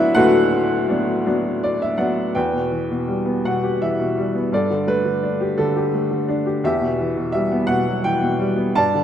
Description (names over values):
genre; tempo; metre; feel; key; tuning
classical, lyrical solo piano; 56 BPM (dotted quarters); 6/8; rubato; E minor; A4 = 440 Hz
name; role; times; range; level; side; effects
clear upright piano; solo; 0.0-9.0 s; D1 to A5; -17 LUFS; equal; none
room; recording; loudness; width
moderate concert hall reverb, RT60 2.2 s; none; -18 LUFS; side -10 dB against mid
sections
0.0-2.3 A section; 2.3-9.0 B section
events
upright piano fill 1.2-2.3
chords
0.0 D6; 2.3 Em; 4.5 Gsus2; 6.6 Emadd9